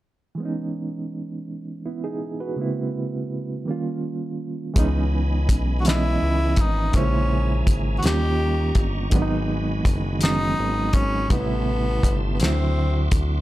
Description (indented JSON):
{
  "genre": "slow six-eight R&B",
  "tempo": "55 BPM (dotted quarters)",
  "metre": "6/8",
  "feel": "straight",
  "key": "C# minor",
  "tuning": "A4 = 440 Hz",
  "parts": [
    { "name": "reed electric piano", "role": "accompaniment", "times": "0.3-13.4 s", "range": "C3 to D#5", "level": "-26 LUFS", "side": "right 3 dB", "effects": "fast tremolo" },
    { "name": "bright tonewheel organ", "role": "sustained chords", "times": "4.8-13.4 s", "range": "E3 to D6", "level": "-35 LUFS", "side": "equal", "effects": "chorus vibrato, stopped rotary speaker" },
    { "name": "smooth synth bass", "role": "bass", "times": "4.8-13.4 s", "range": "F#1 to D#2", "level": "-23 LUFS", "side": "equal", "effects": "none" },
    { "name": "cloth-damped thuddy drum kit", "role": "drums", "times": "4.8-13.3 s", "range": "hi-hat, kick drum, snare drum", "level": "-21 LUFS", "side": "equal", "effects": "none" },
    { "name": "breathy tenor saxophone", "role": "melody", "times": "5.8-13.2 s", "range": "B3 to G4", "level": "-27 LUFS", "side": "left 1 dB", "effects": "tape echo" }
  ],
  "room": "studio ambience",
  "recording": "none",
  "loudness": "-20 LUFS",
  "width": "side -16 dB against mid",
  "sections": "0.4-4.8 A section; 4.8-13.4 B section",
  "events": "none",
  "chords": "0.4 C#m9; 2.6 A#m7b5; 3.7 D#7; 4.8 C#m9; 6.9 A#m7b5; 8.0 D#7; 9.1 G#m7; 11.3 Am7; 12.4 D9"
}